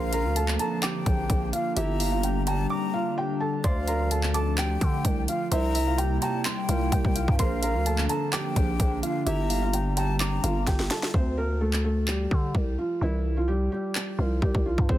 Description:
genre	hip hop, trap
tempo	128 BPM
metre	4/4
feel	half-time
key	D minor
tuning	A4 = 436 Hz
part	felt-muted upright piano	melody	0.0-15.0 s	E3 to C6	-30 LUFS	right 1 dB	ping-pong delay
part	breathy jazz flute	second line	0.0-10.6 s	F5 to Bb5	-35 LUFS	left 5 dB	ping-pong delay
part	dark baby grand piano	accompaniment	0.0-11.2 s	G4 to D7	-36 LUFS	right 6 dB	none
part	hollow soft pad	sustained chords	0.0-11.1 s	C3 to E4	-32 LUFS	equal	chorus
part	growling 808-style bass	bass	0.0-15.0 s	G1 to D3	-27 LUFS	equal	none
part	trap drum kit	drums	0.1-15.0 s	handclaps, hi-hat, kick drum, snare drum	-27 LUFS	equal	overdrive
room	little or no reverb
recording	dense, heavily limited modern master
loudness	-23 LUFS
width	side -13 dB against mid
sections	0.0-11.1 A section; 11.1-15.0 B section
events	drums muted 2.7-3.6; drum fill 10.7-11.1; hi-hats muted 11.1-15.0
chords	0.0 Bbmaj7; 1.8 Gm7; 3.6 Dm; 5.5 C7; 7.4 Bbmaj7; 9.3 Gm7; 11.1 Dm; 13.0 C

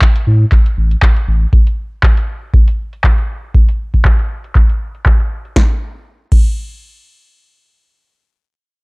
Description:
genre	acid house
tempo	119 BPM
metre	4/4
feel	swing 56% on 16ths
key	unclear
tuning	A4 = 435 Hz
part	electro analog drum machine	drums	0.0-6.5 s	crash cymbal, handclaps, hi-hat, snare drum	-20 LUFS	equal	low-pass filter on snare, studio reverb, low-pass filter on hats, low-pass filter on cymbals
part	electronic kick drum	drums	0.0-6.5 s	none	-10 LUFS	equal	studio reverb
part	warm sub bass	bass	0.3-1.5 s	A1 to A2	-11 LUFS	equal	sidechain pumping
room	little or no reverb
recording	dry, gritty hardware recording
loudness	-11 LUFS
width	side -30 dB against mid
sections	0.0-5.6 A section; 5.6-8.8 B section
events	filter sweep on drum 0.0-5.6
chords	none

